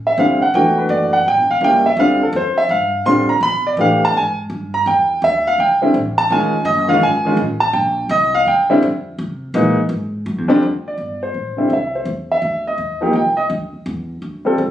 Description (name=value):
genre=jazz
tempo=167 BPM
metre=4/4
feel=swing 65% on 8ths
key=F major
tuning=A4 = 445 Hz
part: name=upright bass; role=bass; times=0.0-14.7 s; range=E1 to C3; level=-26 LUFS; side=equal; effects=none
part: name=warm concert grand piano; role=melody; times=0.1-14.6 s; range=F2 to C6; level=-14 LUFS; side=equal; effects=none
room=moderate studio reverb, RT60 0.9 s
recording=recorded on a phone in the room, studio reverb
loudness=-14 LUFS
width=side -12 dB against mid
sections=0.0-10.6 A section; 10.6-14.7 B section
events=grand piano solo 0.0-10.6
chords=0.0 Bbmaj7 (rootless); 0.5 Esus2; 1.3 A7b9; 2.0 Dm7; 3.4 G13; 4.1 N.C.; 4.9 Am7; 6.3 F7alt; 7.7 Bb69; 9.2 C7(#5, no3); 10.6 Fmaj9; 12.1 Dsus2; 12.8 Eb6; 13.5 Dsus2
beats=0.18 | 0.54 0.90 1.26 1.62 | 1.98 2.34 2.70 3.06 | 3.42 3.78 4.14 4.50 | 4.87 5.22 5.58 5.95 | 6.30 6.67 7.03 7.38 | 7.75 8.11 8.46 8.82 | 9.19 9.54 9.90 10.27 | 10.63 10.99 11.35 11.71 | 12.07 12.43 12.79 13.15 | 13.51 13.87 14.23 14.59